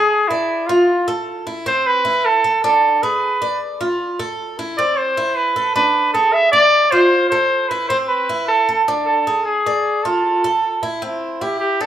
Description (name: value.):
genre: latin.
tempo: 154 BPM.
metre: 4/4.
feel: straight.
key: unclear.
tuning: A4 = 444 Hz.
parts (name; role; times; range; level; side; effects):
warm trumpet; melody; 0.0-11.9 s; E4 to E5; -15 LUFS; right 1 dB; none.
Cuban tres; arpeggios; 0.0-11.9 s; C4 to D5; -21 LUFS; equal; none.
room: moderate plate reverb, RT60 2.6 s.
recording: rough home demo mix, small room ambience.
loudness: -15 LUFS.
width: side -10 dB against mid.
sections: 0.0-11.0 A section.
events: none.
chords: 0.1 E7; 0.9 Fmaj7; 1.7 Cmaj7; 2.4 D5; 3.2 Fdim7; 4.0 Fmaj7; 4.8 Cmaj9; 5.6 D5; 6.3 Fm6; 7.1 Fmaj7#11; 7.9 Cmaj7; 8.7 D5; 9.5 Fm6; 10.2 Fmaj7; 11.0 C.